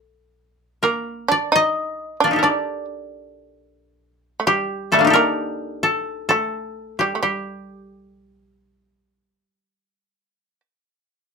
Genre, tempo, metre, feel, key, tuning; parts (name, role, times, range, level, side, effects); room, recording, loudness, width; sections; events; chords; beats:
japanese traditional, Japanese chamber music; 65 BPM; 4/4; rubato; G hirajoshi; A4 = 440 Hz
koto; melody; 0.0-10.6 s; G3 to Eb5; -19 LUFS; left 2 dB
shamisen; second line; 0.8-10.6 s; G3 to Eb4; -22 LUFS; right 4 dB
moderate small room reverb, RT60 0.5 s; minimal, uncompressed stereo recording, faint mains hum; -18 LUFS; side -5 dB against mid
0.0-11.1 A section
0.83 1.75 2.65 | 3.56 4.47 5.39 6.32 | 7.24 8.18 9.13 10.14